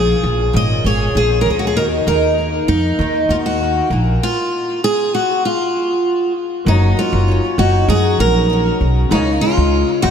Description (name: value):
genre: acoustic pop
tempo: 98 BPM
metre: 4/4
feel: straight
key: unclear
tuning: A4 = 441 Hz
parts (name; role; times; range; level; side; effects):
- picked steel-string acoustic guitar; melody; 0.0-10.1 s; Eb4 to Eb5; -16 LUFS; equal; wide subtle chorus, diffuse ambient delay
- fingerpicked twelve-string acoustic guitar; accompaniment; 0.0-10.1 s; Bb2 to Ab4; -21 LUFS; equal; double-tracked left and right
- warm upright piano; accompaniment; 0.0-10.1 s; Gb3 to F5; -27 LUFS; left 3 dB; none
- upright bass; bass; 0.0-10.1 s; Gb1 to Gb2; -17 LUFS; equal; none
room: moderate lush hall reverb, RT60 3.4 s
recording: dreamy mix soaked in reverb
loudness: -13 LUFS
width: side -7 dB against mid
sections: 0.0-6.7 A section; 6.7-10.1 B section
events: none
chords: 0.0 Bbm7; 1.8 Ebm; 3.9 Bb5; 6.7 Gb6; 9.1 Dbadd9